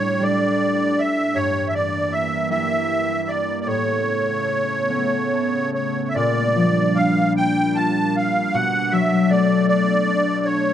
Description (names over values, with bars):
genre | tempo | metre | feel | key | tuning
celtic folk, Celtic slow air | 46-53 BPM (dotted quarters) | 6/8 | rubato | unclear | A4 = 440 Hz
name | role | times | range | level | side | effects
musette accordion | melody | 0.0-10.7 s | C#5 to A5 | -21 LUFS | right 1 dB | none
concert harp | accompaniment | 0.0-10.7 s | G2 to A5 | -22 LUFS | left 3 dB | none
evolving wavetable pad | sustained chords | 0.0-10.7 s | G2 to D4 | -26 LUFS | right 3 dB | chorus, built-in reverb
room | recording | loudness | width
moderate recital hall reverb, RT60 1.4 s | close, detailed microphones | -18 LUFS | side -10 dB against mid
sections
0.0-6.2 A section; 6.2-10.7 B section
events
harp fill 4.9-6.2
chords
0.0 A7sus4; 1.4 Gm6; 3.7 Aadd9; 6.2 Bb6; 8.5 Bm7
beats
0.21 | 1.36 2.50 | 3.67 4.90 | 6.15 7.36 | 8.54 9.68